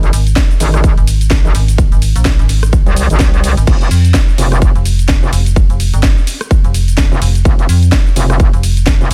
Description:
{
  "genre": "bass house",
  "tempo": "127 BPM",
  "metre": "4/4",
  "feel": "swing 58% on 16ths",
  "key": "unclear",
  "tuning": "A4 = 440 Hz",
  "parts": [
    { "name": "metallic wobble bass", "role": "bass", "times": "0.0-9.1 s", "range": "F1 to C2", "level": "-15 LUFS", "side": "equal", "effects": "chorus, overdrive, sidechain pumping" },
    { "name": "garage drum kit", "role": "drums", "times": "0.0-9.1 s", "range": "cabasa, crash cymbal, hi-hat, ride cymbal, rim click, snare drum", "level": "-22 LUFS", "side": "equal", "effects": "studio reverb" },
    { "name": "metallic FM bass", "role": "bass", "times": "0.1-9.1 s", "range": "F1 to F2", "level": "-14 LUFS", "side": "equal", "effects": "overdrive, sidechain pumping" },
    { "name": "electronic kick drum", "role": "drums", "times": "0.4-9.0 s", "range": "none", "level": "-14 LUFS", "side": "equal", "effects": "studio reverb" }
  ],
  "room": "little or no reverb",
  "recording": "dense, heavily limited modern master",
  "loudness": "-11 LUFS",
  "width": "mono",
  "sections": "0.0-9.1 A section",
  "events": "none",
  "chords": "0.0 Ab; 3.7 N.C."
}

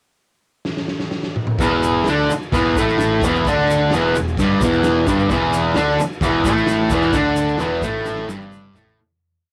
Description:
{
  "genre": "garage rock duo or trio",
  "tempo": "130 BPM",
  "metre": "4/4",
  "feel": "straight",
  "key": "unclear",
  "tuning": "A4 = 440 Hz",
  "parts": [
    { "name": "raw garage drum kit", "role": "drums", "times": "0.7-9.0 s", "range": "crash cymbal, kick drum, snare drum, toms", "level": "-27 LUFS", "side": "equal", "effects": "cassette tape" },
    { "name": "fuzz guitar", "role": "riff", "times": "1.6-9.0 s", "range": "E2 to D4", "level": "-18 LUFS", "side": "equal", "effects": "distortion, cassette tape" },
    { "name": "fuzz picked electric bass", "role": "bass", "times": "1.6-9.0 s", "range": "E1 to D2", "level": "-29 LUFS", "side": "equal", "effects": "overdrive" },
    { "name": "tube shaker", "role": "percussion", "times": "1.6-8.9 s", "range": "none", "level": "-40 LUFS", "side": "equal", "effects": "none" }
  ],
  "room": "moderate booth ambience, RT60 0.3 s",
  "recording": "home recording on cassette",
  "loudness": "-18 LUFS",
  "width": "mono",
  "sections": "0.0-1.6 pickup bar; 1.6-9.0 riff",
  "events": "drum fill 0.7-1.6, 8.1-9.0; fade-out 7.1-9.0",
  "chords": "0.0 N.C.; 1.6 Emadd11"
}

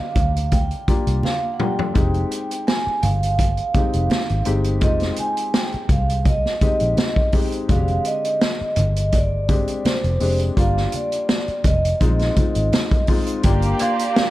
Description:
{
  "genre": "lush 1970s-style soul",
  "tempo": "84 BPM",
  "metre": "4/4",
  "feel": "swing 54% on 16ths",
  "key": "F dorian",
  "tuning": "A4 = 440 Hz",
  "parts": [
    { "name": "vibraphone with soft mallets", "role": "melody", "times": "0.0-14.3 s", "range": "C5 to Ab5", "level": "-24 LUFS", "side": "right 2 dB", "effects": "none" },
    { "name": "warm grand piano", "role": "accompaniment", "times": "0.0-14.3 s", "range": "D3 to G4", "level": "-26 LUFS", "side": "left 4 dB", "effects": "none" },
    { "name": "vintage muted fingered electric bass", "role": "bass", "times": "0.0-13.7 s", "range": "F1 to D2", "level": "-21 LUFS", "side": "equal", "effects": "none" },
    { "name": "vintage drum kit", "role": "drums", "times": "0.2-14.3 s", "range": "hi-hat, kick drum, snare drum, toms", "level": "-20 LUFS", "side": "equal", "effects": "none" },
    { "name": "congas", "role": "percussion", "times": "0.2-14.0 s", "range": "none", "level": "-29 LUFS", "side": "right 2 dB", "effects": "none" },
    { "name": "warm studio violin section", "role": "second line", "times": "13.4-14.3 s", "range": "Bb3 to D5", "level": "-26 LUFS", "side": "right 1 dB", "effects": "none" },
    { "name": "clean electric guitar", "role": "riff", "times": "13.8-14.3 s", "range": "Bb3 to C5", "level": "-26 LUFS", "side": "right 3 dB", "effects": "wah, phaser" }
  ],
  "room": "studio ambience",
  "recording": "dark, warm production",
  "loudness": "-17 LUFS",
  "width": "side -16 dB against mid",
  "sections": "0.0-13.4 A section",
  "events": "drum fill 1.2-2.0",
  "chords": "0.0 Gm7; 2.0 Fm9; 7.7 Fm13; 10.6 Gm7; 12.0 Bb7sus4; 13.4 Gm7"
}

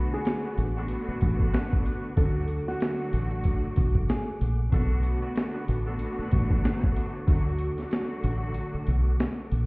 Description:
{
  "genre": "hip hop, boom-bap hip-hop",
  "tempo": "94 BPM",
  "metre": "4/4",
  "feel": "swing 57% on 16ths",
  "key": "B dorian",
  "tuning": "A4 = 441 Hz",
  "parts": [
    { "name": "flamenco guitar", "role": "melody", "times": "0.0-4.4 s", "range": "F#4 to A4", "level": "-35 LUFS", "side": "equal", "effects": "high-pass filter, low-pass filter, digital delay" },
    { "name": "rich studio string section", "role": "accompaniment", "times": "0.0-9.5 s", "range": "D3 to F#4", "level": "-33 LUFS", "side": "equal", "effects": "cassette tape, high-pass filter, low-pass filter" },
    { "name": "tonewheel organ", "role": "sustained chords", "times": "0.0-9.7 s", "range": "A3 to D6", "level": "-46 LUFS", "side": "right 1 dB", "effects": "none" },
    { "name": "deep dub fingered electric bass", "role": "bass", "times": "0.0-9.7 s", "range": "A1 to D2", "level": "-26 LUFS", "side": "equal", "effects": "none" },
    { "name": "clear saxophone section", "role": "stabs", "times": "0.1-6.9 s", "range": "B3 to B4", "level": "-41 LUFS", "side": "right 1 dB", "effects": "high-pass filter, low-pass filter, digital delay" },
    { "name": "boom bap sampler-style drum kit", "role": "drums", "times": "0.3-9.7 s", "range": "hi-hat, kick drum, snare drum", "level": "-25 LUFS", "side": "equal", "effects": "none" }
  ],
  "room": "little or no reverb",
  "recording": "heard muffled through a wall, stone room reverb, EQ",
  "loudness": "-24 LUFS",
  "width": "side -28 dB against mid",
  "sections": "0.0-9.7 A section",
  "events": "kick muted 8.6-9.7",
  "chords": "0.0 Bm7; 2.2 D; 4.7 Bm7; 7.3 D"
}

